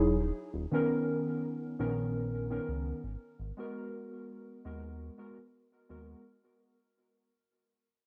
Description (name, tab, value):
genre	vaporwave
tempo	84 BPM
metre	4/4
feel	straight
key	unclear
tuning	A4 = 438 Hz
part	warbly lo-fi synth keys	accompaniment	0.0-6.2 s	D#3 to A#4	-36 LUFS	equal	subtle chorus, vintage 12-bit sampler grit, cassette tape, tape echo
part	chorused synth bass	bass	0.0-6.1 s	D#1 to D#2	-39 LUFS	equal	tube saturation
room	moderate studio reverb, RT60 0.6 s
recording	home recording on cassette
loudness	-35 LUFS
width	mono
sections	0.0-6.3 A section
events	fade-out 0.0-6.3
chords	0.2 Bmaj9/D#; 3.0 G#m9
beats	| 0.54 1.25 1.97 2.68 | 3.40 4.11 4.83 5.54